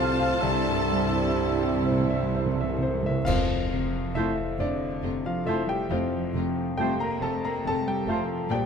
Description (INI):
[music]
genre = classical, romantic movement for piano and orchestra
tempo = 42-48 BPM (dotted quarters)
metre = 12/8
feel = rubato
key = F major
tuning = A4 = 440 Hz
[part]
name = clear grand piano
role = melody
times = 0.0-8.7 s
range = Bb1 to Bb5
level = -27 LUFS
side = left 3 dB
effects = none
[part]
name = rich studio violin section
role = melody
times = 0.0-8.6 s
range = C5 to A5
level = -36 LUFS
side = left 5 dB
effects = none
[part]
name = mellow clarinet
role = second line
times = 0.0-8.2 s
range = F4 to A4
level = -39 LUFS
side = left 2 dB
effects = none
[part]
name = mellow hollow small flute group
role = second line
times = 0.0-8.3 s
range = A5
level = -36 LUFS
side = right 9 dB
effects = none
[part]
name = mellow oboe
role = second line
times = 0.0-8.2 s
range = C5 to F5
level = -36 LUFS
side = right 2 dB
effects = none
[part]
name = rich studio violin section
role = second line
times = 0.0-8.6 s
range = D4 to A4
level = -44 LUFS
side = equal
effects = none
[part]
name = mellow bassoon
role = accompaniment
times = 0.0-8.2 s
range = F3 to A3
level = -37 LUFS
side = right 3 dB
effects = none
[part]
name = rich studio viola section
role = accompaniment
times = 0.0-8.6 s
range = A3 to F4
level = -36 LUFS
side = right 6 dB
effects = none
[part]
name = dark French horn section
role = sustained chords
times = 0.0-8.2 s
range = A3 to F4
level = -35 LUFS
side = left 5 dB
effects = none
[part]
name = dark trombone section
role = sustained chords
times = 0.0-2.9 s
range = G2 to G3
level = -36 LUFS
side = right 7 dB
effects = none
[part]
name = dark trumpet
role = stabs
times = 0.0-2.9 s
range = C5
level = -39 LUFS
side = right 3 dB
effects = none
[part]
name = clear studio cello section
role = bass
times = 0.0-8.7 s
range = C3 to Bb3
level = -36 LUFS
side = right 4 dB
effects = none
[part]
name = rich studio double bass section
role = bass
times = 0.0-8.6 s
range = F1 to C2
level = -35 LUFS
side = right 4 dB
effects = none
[part]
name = warm tuba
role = bass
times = 0.0-3.0 s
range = C2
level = -35 LUFS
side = right 6 dB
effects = none
[part]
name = timpani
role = percussion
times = 0.4-4.5 s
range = F2 to C3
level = -32 LUFS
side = right 3 dB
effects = none
[part]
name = clash cymbals and concert bass drum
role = percussion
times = 3.3-5.0 s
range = none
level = -34 LUFS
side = equal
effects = none
[sound]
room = light reverb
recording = close, detailed microphones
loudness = -24 LUFS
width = side -6 dB against mid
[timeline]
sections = 0.0-3.3 A section; 3.3-8.7 B section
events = timpani fill 0.4-3.3; band accent 3.3-4.2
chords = 0.4 C; 3.3 F